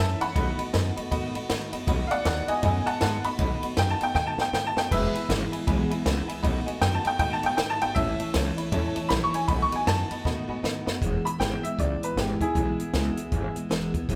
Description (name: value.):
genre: rockabilly.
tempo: 157 BPM.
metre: 4/4.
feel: swing 62% on 8ths.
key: E major from 11.0 s.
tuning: A4 = 441 Hz.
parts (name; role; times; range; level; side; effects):
bright upright piano; melody; 0.0-13.5 s; E4 to C#6; -30 LUFS; equal; none.
picked steel-string acoustic guitar; accompaniment; 0.0-14.2 s; E2 to F#4; -34 LUFS; equal; none.
tack piano; accompaniment; 0.0-11.0 s; C#5 to C#6; -39 LUFS; equal; none.
upright bass; bass; 0.0-14.2 s; E1 to A2; -32 LUFS; equal; none.
compact cocktail drum kit; drums; 0.2-14.2 s; crash cymbal, hi-hat, kick drum, ride cymbal, snare drum; -33 LUFS; equal; none.
room: moderate stone room reverb, RT60 1.2 s.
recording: band playing live in one room.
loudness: -26 LUFS.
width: mono.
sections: 0.0-11.0 A section; 11.0-14.2 B section.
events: drum fill 4.2-4.9, 10.3-11.0; honky-tonk piano fill 10.3-11.0.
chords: 0.4 B7; 4.9 E; 6.4 B7; 8.0 A; 9.5 B7; 11.0 E.